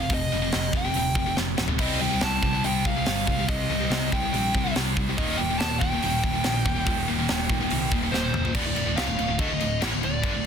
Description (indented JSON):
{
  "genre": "heavy metal",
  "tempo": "142 BPM",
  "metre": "4/4",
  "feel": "straight",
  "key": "D phrygian",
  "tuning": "A4 = 439 Hz",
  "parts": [
    { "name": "dark smooth lead guitar", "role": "melody", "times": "0.0-10.5 s", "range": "C5 to A5", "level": "-29 LUFS", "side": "equal", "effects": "overdrive, tape echo" },
    { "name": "high-gain distorted guitar", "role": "riff", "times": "0.0-10.4 s", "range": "D2 to C4", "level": "-31 LUFS", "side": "right 11 dB", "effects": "distortion" },
    { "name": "tight distorted guitar", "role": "riff", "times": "0.0-10.5 s", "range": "D2 to C4", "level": "-30 LUFS", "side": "left 12 dB", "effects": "distortion" },
    { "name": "picked electric bass", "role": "bass", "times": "0.0-10.5 s", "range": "D1 to Eb2", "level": "-31 LUFS", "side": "equal", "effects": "none" },
    { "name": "tight metal drum kit", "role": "drums", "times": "0.1-10.3 s", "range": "crash cymbal, hi-hat, kick drum, snare drum, toms", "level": "-27 LUFS", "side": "equal", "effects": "none" },
    { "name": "scooped high-gain guitar", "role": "riff", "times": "1.8-10.4 s", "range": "D2 to C4", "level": "-31 LUFS", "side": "right 1 dB", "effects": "distortion" }
  ],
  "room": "light reverb",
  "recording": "dense, heavily limited modern master",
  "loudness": "-22 LUFS",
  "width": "side -7 dB against mid",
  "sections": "0.0-8.6 A section; 8.6-10.5 B section",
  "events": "drum fill 1.4-1.8, 8.1-8.6",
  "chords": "0.0 F5; 1.8 Cm; 5.2 Eb; 8.6 Dm"
}